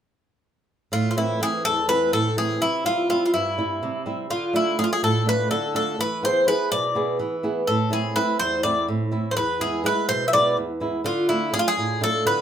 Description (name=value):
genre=greek folk, Greek bouzouki band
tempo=249 BPM (eighths)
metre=7/8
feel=straight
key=A harmonic minor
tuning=A4 = 440 Hz
part: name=Greek bouzouki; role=melody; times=0.9-12.4 s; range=E4 to E5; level=-22 LUFS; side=left 1 dB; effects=none
part: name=flamenco guitar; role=accompaniment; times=0.9-12.4 s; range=E2 to G#4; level=-25 LUFS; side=right 2 dB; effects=none
room=moderate studio ambience, RT60 0.5 s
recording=minimal, uncompressed stereo recording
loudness=-20 LUFS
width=side -9 dB against mid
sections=0.9-12.4 A section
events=none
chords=0.9 Am; 2.6 C; 4.3 Dm; 6.0 E; 7.7 Am; 9.4 E; 11.0 Dm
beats=| 0.92 1.16 1.40 1.64 1.88 2.12 2.37 | 2.61 2.85 3.09 3.33 3.57 3.81 4.06 | 4.30 4.54 4.78 5.02 5.26 5.50 5.75 | 5.99 6.23 6.47 6.71 6.95 7.19 7.43 | 7.67 7.92 8.16 8.40 8.64 8.88 9.12 | 9.36 9.60 9.84 10.08 10.32 10.56 10.80 | 11.05 11.29 11.53 11.77 12.01 12.25